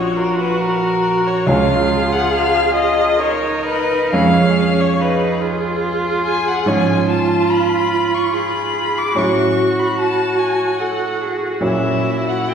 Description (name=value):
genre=classical, slow romantic movement for piano quartet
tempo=61-76 BPM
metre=3/4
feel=rubato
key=F# minor from 6.7 s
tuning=A4 = 439 Hz
part: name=muted violin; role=melody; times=0.0-12.5 s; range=A#4 to D6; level=-20 LUFS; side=left 4 dB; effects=none
part: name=muted cello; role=second line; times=0.0-12.5 s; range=E#4 to A#4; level=-20 LUFS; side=right 2 dB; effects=none
part: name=clear concert grand piano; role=accompaniment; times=0.0-12.5 s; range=A#1 to C#5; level=-20 LUFS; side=right 3 dB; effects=none
part: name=muted viola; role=accompaniment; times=0.0-12.5 s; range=C#4 to F#4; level=-22 LUFS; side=equal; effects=none
room=wet concert hall reverb, RT60 1.7 s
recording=recorded in a church or concert hall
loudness=-14 LUFS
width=side -7 dB against mid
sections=0.0-12.5 A section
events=none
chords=0.0 F#/A#; 1.5 C#; 4.1 C#/E#; 6.7 C#/G#; 9.2 F#m/A; 11.6 F#7/A#